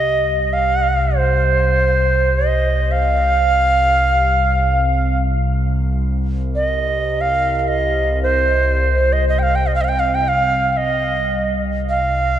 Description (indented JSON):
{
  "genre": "world meditative, free-time meditation music",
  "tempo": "free time",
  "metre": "none",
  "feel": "none",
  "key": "C minor pentatonic",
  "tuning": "A4 = 440 Hz",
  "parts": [
    { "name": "bright Native American-style cedar flute", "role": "melody", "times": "0.0-12.4 s", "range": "C5 to G5", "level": "-16 LUFS", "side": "right 2 dB", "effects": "diffuse ambient delay" },
    { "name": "analog drone", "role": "drone", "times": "0.0-12.4 s", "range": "C2", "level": "-19 LUFS", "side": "equal", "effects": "chorus, phaser" },
    { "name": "quartz singing bowl", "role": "texture", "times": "0.0-3.9 s", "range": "G4", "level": "-37 LUFS", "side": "left 2 dB", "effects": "none" }
  ],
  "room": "moderate huge ambient reverb, RT60 4.4 s",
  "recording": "dark, warm production, nothing above 10.7 kHz",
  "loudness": "-15 LUFS",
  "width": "side -10 dB against mid",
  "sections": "0.0-12.4 A section",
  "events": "none",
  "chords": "none"
}